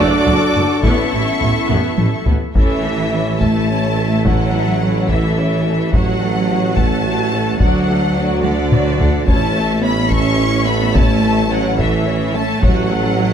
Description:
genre	cinematic, epic orchestral film score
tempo	72 BPM (dotted quarters)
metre	6/8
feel	straight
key	unclear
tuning	A4 = 439 Hz
part	rich symphonic violin section	melody	0.0-13.3 s	D5 to D6	-23 LUFS	left 3 dB	none
part	dark symphonic violin section	second line	0.0-13.3 s	E4 to F#5	-24 LUFS	left 4 dB	none
part	rich symphonic viola section	accompaniment	0.0-13.3 s	F#3 to A4	-24 LUFS	right 1 dB	none
part	clear trombone section	sustained chords	0.0-2.2 s	E3 to D4	-22 LUFS	right 4 dB	none
part	mellow French horn section	sustained chords	0.0-13.3 s	A3 to D4	-28 LUFS	left 3 dB	none
part	warm woodwind section	sustained chords	0.0-2.3 s	B3 to E5	-25 LUFS	left 2 dB	none
part	rich studio cello section	bass	0.0-13.3 s	F#2 to C#4	-21 LUFS	right 1 dB	none
part	rich symphonic double bass section	bass	0.0-13.3 s	F#1 to D2	-22 LUFS	right 3 dB	none
part	warm tuba	bass	0.0-13.3 s	F#1 to D2	-21 LUFS	right 3 dB	none
part	taiko ensemble	drums	0.3-13.2 s	none	-18 LUFS	left 1 dB	none
room	moderate scoring stage reverb, RT60 1.8 s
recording	none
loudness	-13 LUFS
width	side -8 dB against mid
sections	0.0-2.6 A section; 2.6-13.3 B section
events	drum fill 1.7-2.6, 8.4-9.3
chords	0.0 D/F#; 0.8 Aadd9; 2.6 A; 5.9 F#m/A; 7.6 D; 9.3 A; 12.6 F#m/A

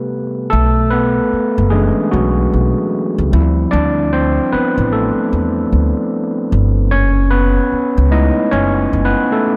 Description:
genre	R&B, neo-soul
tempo	75 BPM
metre	4/4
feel	swing 61% on 16ths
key	B dorian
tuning	A4 = 440 Hz
part	overdriven tine electric piano	accompaniment	0.0-9.6 s	C3 to D#5	-17 LUFS	equal	none
part	upright bass	bass	0.5-9.1 s	F#1 to E2	-17 LUFS	equal	none
room	moderate lush hall reverb, RT60 2.7 s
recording	dreamy mix soaked in reverb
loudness	-15 LUFS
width	mono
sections	0.5-9.6 A section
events	break 0.0-0.5; tine electric piano solo 0.5-9.6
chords	0.0 Am9; 0.5 Bm11; 3.3 Dm11; 6.9 F#m11

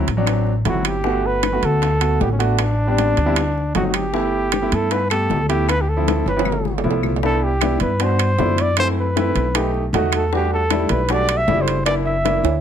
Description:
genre	Afro-Cuban jazz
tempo	155 BPM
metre	4/4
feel	straight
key	G major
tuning	A4 = 440 Hz
part	warm baby grand piano	accompaniment	0.0-12.5 s	F3 to G4	-22 LUFS	right 1 dB	none
part	upright bass	bass	0.1-12.6 s	F#1 to G2	-21 LUFS	equal	none
part	bongos	percussion	0.1-12.6 s	none	-27 LUFS	left 6 dB	none
part	timbales	percussion	0.1-12.5 s	none	-25 LUFS	right 10 dB	none
part	claves	percussion	0.3-12.1 s	none	-32 LUFS	left 4 dB	none
part	dark trumpet	melody	0.7-12.6 s	C#4 to E5	-22 LUFS	right 1 dB	none
room	light reverb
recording	close, detailed microphones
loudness	-16 LUFS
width	side -9 dB against mid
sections	0.0-7.2 A section; 7.2-12.6 B section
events	drum fill 6.1-7.2, 12.4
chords	0.0 D9; 1.0 Gmaj7; 2.6 Am11; 3.4 D7b9; 4.1 G69; 5.7 Dm7; 6.5 G13; 7.2 Cmaj7; 8.8 F#m7b5; 9.5 B7b13; 10.3 Em11; 11.9 F#aug7

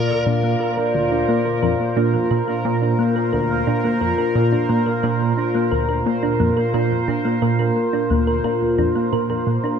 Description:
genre	ambient, sequencer-driven space music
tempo	88 BPM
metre	4/4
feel	straight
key	Bb major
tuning	A4 = 440 Hz
part	sweeping resonant pad	sustained chords	0.0-9.8 s	Bb2 to D5	-21 LUFS	left 1 dB	chorus, phaser
part	tight sequenced synth	riff	0.0-9.6 s	D2 to Bb2	-22 LUFS	right 1 dB	chorus, phaser, tape echo
part	bubbling stepped-filter texture	texture	0.0-9.8 s	Bb4 to Bb5	-27 LUFS	right 2 dB	chorus, built-in reverb
part	thumb-piano-like synth pluck	arpeggios	0.3-9.8 s	Bb3 to Bb4	-23 LUFS	moving between left 4 dB and right 5 dB	chorus, auto-pan, tape echo
room	moderate plate reverb, RT60 3.1 s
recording	dreamy mix soaked in reverb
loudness	-17 LUFS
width	side -7 dB against mid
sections	0.0-9.8 A section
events	none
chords	0.0 Bb

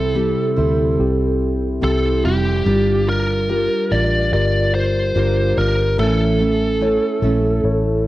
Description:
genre	pop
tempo	72 BPM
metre	4/4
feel	straight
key	unclear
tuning	A4 = 439 Hz
part	biting lead guitar	melody	0.0-8.1 s	G4 to D5	-20 LUFS	right 1 dB	overdrive
part	tine electric piano	accompaniment	0.0-8.1 s	C3 to C#5	-22 LUFS	left 3 dB	none
part	picked steel-string acoustic guitar	arpeggios	0.0-8.1 s	A2 to C5	-24 LUFS	right 4 dB	none
part	vintage muted fingered electric bass	bass	0.0-8.1 s	F1 to D2	-20 LUFS	equal	none
room	light reverb, digital ambience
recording	worn, warbling old tape, cassette tape, warbly pitch drift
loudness	-15 LUFS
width	side -16 dB against mid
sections	0.0-8.1 A section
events	none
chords	0.0 C; 2.7 Gm7; 6.0 A

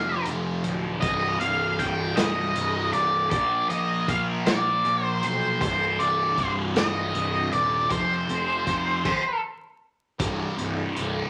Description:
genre	psychedelic rock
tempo	52 BPM (dotted quarters)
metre	6/8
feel	straight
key	C minor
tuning	A4 = 440 Hz
part	octave-fuzz lead guitar	melody	0.0-9.4 s	C5 to G5	-27 LUFS	equal	distortion
part	thick fuzz guitar	riff	0.0-11.3 s	C2 to Bb3	-32 LUFS	equal	distortion, phaser
part	fuzz picked electric bass	bass	0.0-11.2 s	C1 to B1	-33 LUFS	equal	overdrive
part	crunchy breakbeat drum kit	drums	0.3-11.1 s	crash cymbal, hi-hat, kick drum, snare drum	-31 LUFS	equal	none
room	moderate large studio reverb, RT60 0.9 s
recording	vinyl crackle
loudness	-25 LUFS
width	mono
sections	0.0-10.2 A section; 10.2-11.3 B section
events	stop 9.1-10.2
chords	0.0 F5; 1.0 Cm; 3.3 Bb; 5.6 Cm; 7.9 F5; 10.2 C5

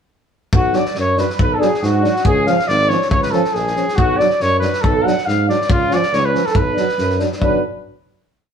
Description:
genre	balkan folk, Balkan brass band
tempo	140 BPM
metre	2/4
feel	swing 54% on 16ths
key	B dorian sharp4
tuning	A4 = 440 Hz
part	mellow trumpet	melody	0.5-7.6 s	E#4 to F#5	-20 LUFS	equal	none
part	warm flugelhorn	second line	0.5-7.6 s	E#4 to F#5	-21 LUFS	right 1 dB	none
part	warm tuba	bass	0.5-7.6 s	G#1 to G#2	-21 LUFS	right 1 dB	none
part	loose indie drum kit	percussion	0.5-7.6 s	kick drum, snare drum	-20 LUFS	left 1 dB	none
part	warm euphonium	accompaniment	0.7-7.6 s	E#3 to F#3	-24 LUFS	right 5 dB	none
part	warm trombone	accompaniment	0.7-7.6 s	C#4 to D4	-23 LUFS	left 3 dB	none
room	moderate studio reverb, RT60 0.8 s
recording	band playing live in one room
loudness	-14 LUFS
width	side -7 dB against mid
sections	0.5-7.4 A section; 7.4-8.3 final chord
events	none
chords	0.5 Bm; 2.3 C#; 4.0 Bm; 5.7 C#; 6.6 Bm

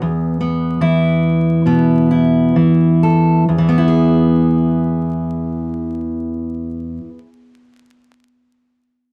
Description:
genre	folk, solo fingerstyle acoustic guitar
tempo	63-77 BPM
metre	4/4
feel	rubato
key	E major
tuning	A4 = 440 Hz
part	fingerpicked steel-string acoustic guitar	solo	0.0-7.4 s	E2 to A4	-16 LUFS	equal	none
room	moderate studio reverb, RT60 0.6 s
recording	band playing live in one room, vinyl crackle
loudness	-15 LUFS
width	mono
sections	0.0-3.5 A section; 3.5-7.2 B section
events	slowing down 0.0-3.5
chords	0.0 E5; 3.5 E

